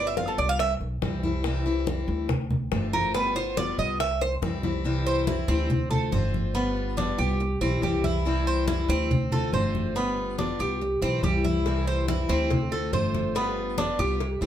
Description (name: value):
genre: latin, Cuban son and guajira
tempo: 141 BPM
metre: 4/4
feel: straight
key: C major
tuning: A4 = 443 Hz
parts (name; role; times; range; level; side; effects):
- picked steel-string acoustic guitar; accompaniment; 0.0-14.5 s; C3 to F4; -30 LUFS; left 3 dB; none
- Cuban tres; arpeggios; 0.0-14.5 s; B3 to F5; -28 LUFS; right 3 dB; none
- upright bass; bass; 0.0-14.5 s; G1 to D2; -29 LUFS; equal; none
- bongos and cowbell; percussion; 0.2-4.7, 11.7-14.4 s; none; -36 LUFS; left 6 dB; none
- congas; percussion; 0.2-14.5 s; none; -29 LUFS; left 1 dB; none
room: moderate studio reverb, RT60 0.6 s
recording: none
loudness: -23 LUFS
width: side -10 dB against mid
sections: 0.0-4.9 A section; 4.9-14.5 B section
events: Cuban tres solo 0.0-4.9; drum fill 4.2-4.9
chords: 0.0 G7; 0.6 C; 2.3 Dm7; 3.1 G7; 4.0 C; 5.7 Dm7; 6.6 G7; 7.4 C; 9.1 Dm7; 10.0 G7; 10.8 C; 12.5 Dm7; 13.4 G7